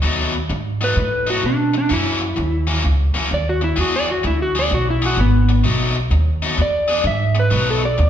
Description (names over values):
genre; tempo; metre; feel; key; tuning
electric blues shuffle; 128 BPM; 4/4; swing 67% on 8ths; B mixolydian; A4 = 440 Hz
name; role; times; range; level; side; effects
overdriven electric guitar; riff; 0.0-8.0 s; F#2 to G#4; -23 LUFS; left 3 dB; none
upright bass; bass; 0.0-8.1 s; G#1 to B2; -18 LUFS; right 1 dB; none
electric slide guitar; melody; 0.8-8.1 s; B3 to E5; -20 LUFS; equal; none
room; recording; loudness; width
wet large studio reverb, RT60 1.2 s; band playing live in one room; -16 LUFS; side -10 dB against mid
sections
0.0-8.1 A section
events
electric slide guitar solo 0.0-8.1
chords
0.0 B7; 1.9 F#7; 3.8 E7; 5.6 B7; 6.6 E7; 7.5 B7